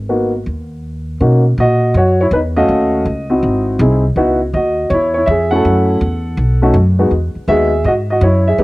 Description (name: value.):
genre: jazz.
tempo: 162 BPM.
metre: 4/4.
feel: swing 66% on 8ths.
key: B major.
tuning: A4 = 439 Hz.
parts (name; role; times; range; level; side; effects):
upright bass; bass; 0.0-8.6 s; G#1 to B2; -15 LUFS; equal; none.
warm grand piano; melody; 0.1-8.6 s; G#3 to F#5; -14 LUFS; equal; cassette tape.
room: moderate studio reverb, RT60 0.5 s.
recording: home recording on cassette.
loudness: -11 LUFS.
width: side -20 dB against mid.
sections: 0.0-1.2 A section; 1.2-8.6 B section.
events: none.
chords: 0.0 G#5; 1.2 Bmaj9; 2.7 D#m7b5; 3.4 G#7b13; 4.2 C#madd9; 5.6 F#m7; 6.4 B7; 7.1 Emaj9.